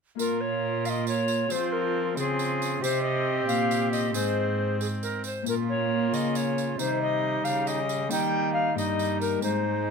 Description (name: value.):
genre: classical, renaissance-style consort dance.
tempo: 91 BPM (dotted quarters).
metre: 6/8.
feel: straight.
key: Bb dorian.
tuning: A4 = 440 Hz.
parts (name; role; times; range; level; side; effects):
tenor recorder; melody; 0.2-9.9 s; Ab4 to G5; -28 LUFS; left 4 dB; none.
bright tenor recorder; second line; 0.2-9.9 s; Eb4 to C5; -32 LUFS; right 8 dB; none.
Celtic harp; accompaniment; 0.2-9.9 s; G2 to Bb4; -33 LUFS; left 8 dB; none.
warm viola; accompaniment; 0.2-9.9 s; G3 to C4; -33 LUFS; equal; none.
rich cello; bass; 0.2-9.9 s; G2 to F3; -32 LUFS; right 3 dB; none.
tambourine; percussion; 0.2-9.6 s; none; -37 LUFS; right 8 dB; none.
room: light reverb.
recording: minimal, uncompressed stereo recording.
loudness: -24 LUFS.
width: side -5 dB against mid.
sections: 0.2-9.9 A section.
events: none.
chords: 0.2 Bbm; 1.5 Fm; 2.8 Cm; 4.1 Ab; 5.5 Bbm; 6.8 Cm; 8.1 Eb.